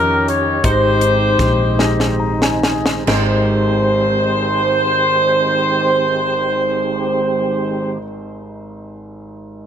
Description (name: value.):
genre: slow gospel.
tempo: 43-58 BPM (dotted quarters).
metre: 6/8.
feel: straight.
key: Ab major.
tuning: A4 = 440 Hz.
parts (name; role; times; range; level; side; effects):
mellow horn section; melody; 0.0-8.0 s; Db4 to Db5; -16 LUFS; equal; none.
warm concert grand piano; accompaniment; 0.0-9.7 s; Ab1 to Bb5; -22 LUFS; left 1 dB; none.
percussive tonewheel organ; sustained chords; 0.0-8.0 s; Eb3 to G4; -23 LUFS; right 5 dB; slow rotary speaker, chorus vibrato.
hollow-body short-scale fingered electric bass; bass; 0.0-8.0 s; Ab1 to F2; -21 LUFS; equal; none.
tight funk drum kit; drums; 0.3-3.3 s; china cymbal, hi-hat, kick drum, snare drum; -19 LUFS; equal; none.
room: light reverb, small room ambience.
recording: none.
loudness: -14 LUFS.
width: side -8 dB against mid.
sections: 0.0-3.1 A section; 3.1-8.7 B section.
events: slowing down 0.0-3.1; drum fill 1.8-3.1; grand piano fill 1.8-3.1.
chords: 0.0 Eb9; 0.6 Abmaj7.